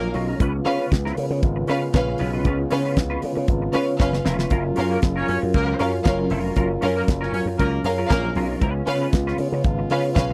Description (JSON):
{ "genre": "disco", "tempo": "117 BPM", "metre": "4/4", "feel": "straight", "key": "unclear", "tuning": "A4 = 439 Hz", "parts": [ { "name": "warm studio violin section", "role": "second line", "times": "0.0-10.3 s", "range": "Db4 to F5", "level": "-27 LUFS", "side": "equal", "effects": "none" }, { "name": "reed electric piano", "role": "accompaniment", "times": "0.0-10.3 s", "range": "Db3 to Db5", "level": "-29 LUFS", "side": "equal", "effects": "fast tremolo" }, { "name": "semi-hollow electric guitar", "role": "accompaniment", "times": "0.0-10.3 s", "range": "Db4 to Cb5", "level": "-32 LUFS", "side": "equal", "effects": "ensemble chorus" }, { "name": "warm French horn section", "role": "sustained chords", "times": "0.0-10.3 s", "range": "Db3 to Bb4", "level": "-32 LUFS", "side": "equal", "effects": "none" }, { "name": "warm horn section", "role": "stabs", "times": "0.0-0.1, 4.9-8.3 s", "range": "Bb3 to Db5", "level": "-29 LUFS", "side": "equal", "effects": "none" }, { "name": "slap bass with an envelope filter", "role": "bass", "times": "0.0-10.3 s", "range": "F1 to Db3", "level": "-28 LUFS", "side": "equal", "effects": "none" }, { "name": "damped 70s drum kit", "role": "drums", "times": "0.1-10.3 s", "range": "hi-hat, kick drum, snare drum", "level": "-24 LUFS", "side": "equal", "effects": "none" } ], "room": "little or no reverb", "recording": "dry, close 1970s-style studio recording", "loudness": "-22 LUFS", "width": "mono", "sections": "0.0-10.3 A section", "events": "drum fill 4.0-4.5", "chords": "0.4 Db7; 4.5 Gbmaj7; 8.6 Db7", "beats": "| 0.41 0.92 1.43 1.95 | 2.46 2.97 3.48 4.00 | 4.51 5.02 5.54 6.05 | 6.56 7.08 7.59 8.10 | 8.62 9.13 9.64 10.15" }